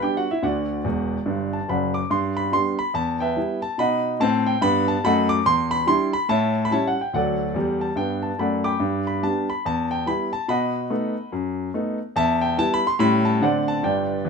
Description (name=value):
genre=jazz, stride piano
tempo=143 BPM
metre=4/4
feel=swing 60% on 8ths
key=G major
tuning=A4 = 440 Hz
part: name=warm grand piano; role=solo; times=0.0-14.3 s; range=E1 to D6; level=-20 LUFS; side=equal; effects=none
room=moderate studio reverb, RT60 0.7 s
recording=minimal, uncompressed stereo recording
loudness=-20 LUFS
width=side -5 dB against mid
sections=0.0-2.1 A section; 2.1-14.3 A section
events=grand piano fill 0.8-2.1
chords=0.4 D; 2.1 G; 2.9 Em; 3.8 B7; 5.5 Em7; 6.3 A7; 7.1 D; 8.8 G; 9.6 Em; 10.5 B7; 12.2 Em; 13.0 A7; 13.4 D7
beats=0.01 | 0.43 0.84 1.26 1.68 | 2.10 2.52 2.94 3.36 | 3.78 4.20 4.62 5.04 | 5.46 5.88 6.30 6.72 | 7.14 7.55 7.97 8.39 | 8.81 9.23 9.65 10.07 | 10.49 10.90 11.32 11.74 | 12.16 12.58 13.00 13.41 | 13.83 14.25